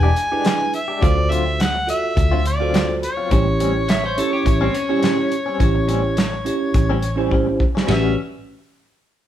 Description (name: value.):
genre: straight-eighth soul blues.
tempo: 105 BPM.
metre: 4/4.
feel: swing 54% on 16ths.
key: A mixolydian.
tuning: A4 = 440 Hz.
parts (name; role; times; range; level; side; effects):
mellow harmonica; melody; 0.0-8.2 s; C#5 to G#5; -23 LUFS; left 1 dB; overdrive.
bell-like tine electric piano; accompaniment; 0.0-8.1 s; C#4 to D5; -23 LUFS; right 4 dB; medium stereo tremolo.
direct-recorded clean electric guitar; stabs; 0.0-8.1 s; A2 to G4; -26 LUFS; left 3 dB; tremolo.
vintage muted fingered electric bass; bass; 0.0-8.2 s; E1 to D2; -21 LUFS; equal; none.
warm soul drum kit; drums; 0.2-8.0 s; hi-hat, kick drum, ride cymbal, snare drum; -20 LUFS; equal; none.
electric guitar at the edge of break-up; second line; 3.9-8.2 s; B#3 to E5; -25 LUFS; left 3 dB; none.
room: moderate large studio reverb, RT60 1.0 s.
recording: band playing live in one room.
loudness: -16 LUFS.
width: side -11 dB against mid.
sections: 0.0-7.9 A section; 7.9-9.3 B section.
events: drum fill 7.3-7.9.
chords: 0.0 E7#9; 1.0 D7#9; 3.3 A7#9; 7.9 A13.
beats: 0.45 | 1.02 1.60 2.17 2.74 | 3.31 3.88 4.46 5.03 | 5.60 6.17 6.74 7.31 | 7.88.